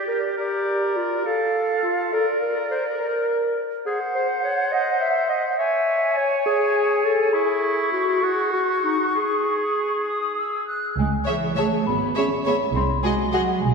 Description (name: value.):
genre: cinematic, playful, whimsical film cue.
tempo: 68 BPM (dotted quarters).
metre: 6/8.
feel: straight.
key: C# minor from 3.9 s.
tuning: A4 = 440 Hz.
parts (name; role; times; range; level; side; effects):
clear oboe; second line; 0.0-10.6 s; E4 to C#5; -28 LUFS; right 1 dB; none.
mellow clarinet; second line; 0.0-10.7 s; D#4 to E5; -22 LUFS; left 1 dB; none.
silver concert flute; second line; 0.0-11.0 s; D5 to F#6; -26 LUFS; right 1 dB; none.
celesta; melody; 11.0-13.7 s; E5 to C#6; -26 LUFS; left 5 dB; none.
rich studio double bass section; bass; 11.0-13.7 s; G#1 to C#2; -26 LUFS; right 3 dB; none.
warm studio cello section; bass; 11.0-13.7 s; E3 to C#4; -25 LUFS; right 4 dB; none.
rich studio violin section; melody; 11.3-13.4 s; D#5 to E5; -32 LUFS; left 3 dB; none.
rich studio violin section; second line; 11.3-13.4 s; G#4 to C#5; -28 LUFS; equal; none.
rich studio viola section; accompaniment; 11.3-13.4 s; F#4 to G#4; -26 LUFS; right 2 dB; none.
room: wet church reverb, RT60 2.8 s.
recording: minimal, uncompressed stereo recording.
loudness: -20 LUFS.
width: side -4 dB against mid.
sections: 0.0-11.0 A section; 11.0-13.7 B section.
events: none.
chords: 0.4 Bb; 1.2 F/A; 2.1 Bb; 3.9 G#7 (rootless); 5.6 C#m; 7.3 C#m/E; 8.2 D#m7 (rootless); 9.2 C#5/G#; 10.1 G#5; 11.0 C#m; 12.7 G#7/B#.